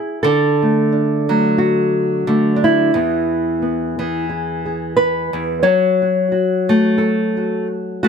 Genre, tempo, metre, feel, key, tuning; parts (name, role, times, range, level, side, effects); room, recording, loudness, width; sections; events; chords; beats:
folk, solo fingerstyle acoustic guitar; 89 BPM; 4/4; swing 56% on 8ths; A4 = 440 Hz
nylon-string guitar; solo; 0.0-8.1 s; E2 to C#5; -15 LUFS; equal
moderate spring reverb, RT60 1.2 s; -14 LUFS; side -6 dB against mid
0.2-8.1 A section
0.2 D; 2.9 E; 5.6 F#m
| 0.25 0.92 1.59 2.27 | 2.94 3.62 4.29 4.96 | 5.64 6.31 6.99 7.66